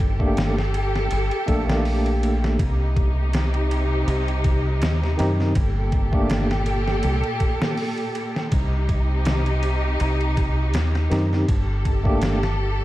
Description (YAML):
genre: trip hop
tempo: 81 BPM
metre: 4/4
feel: swing 55% on 16ths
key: G minor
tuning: A4 = 441 Hz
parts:
  - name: clear symphonic string section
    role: sustained chords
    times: 0.0-12.8 s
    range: Bb2 to A4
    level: -26 LUFS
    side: equal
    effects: none
  - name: deep dub fingered electric bass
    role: bass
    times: 0.0-12.8 s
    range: G1 to F#2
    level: -22 LUFS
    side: equal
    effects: none
  - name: trip hop sampler-style drum kit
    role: drums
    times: 0.0-12.6 s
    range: hi-hat, kick drum, ride cymbal, snare drum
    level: -25 LUFS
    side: equal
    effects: studio reverb
  - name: barky tine electric piano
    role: accompaniment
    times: 0.2-6.5, 11.1-12.4 s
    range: Eb3 to A4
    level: -27 LUFS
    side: equal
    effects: tremolo, tape echo
room: digital ambience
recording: vinyl crackle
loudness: -19 LUFS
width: side -16 dB against mid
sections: 0.0-12.8 A section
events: none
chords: 0.0 Gmadd9; 2.6 Cm; 5.6 Gmadd9; 8.5 Cm; 11.5 Gmadd9